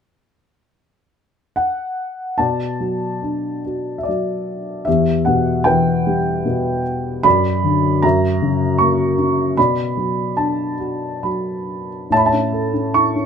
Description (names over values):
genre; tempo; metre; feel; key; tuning
classical, lyrical solo piano; 64-80 BPM; 3/4; rubato; B minor; A4 = 441 Hz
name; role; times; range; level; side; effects
dark upright piano; solo; 1.6-13.3 s; E2 to C#6; -16 LUFS; equal; none
room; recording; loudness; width
light reverb; close, detailed microphones; -16 LUFS; side -7 dB against mid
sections
0.0-2.4 A section; 2.4-12.1 B section; 12.1-13.3 C section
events
none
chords
0.0 N.C.; 2.4 Bm7; 4.9 Em; 7.3 Bm/F#; 8.0 F#7; 9.6 Bm; 12.1 A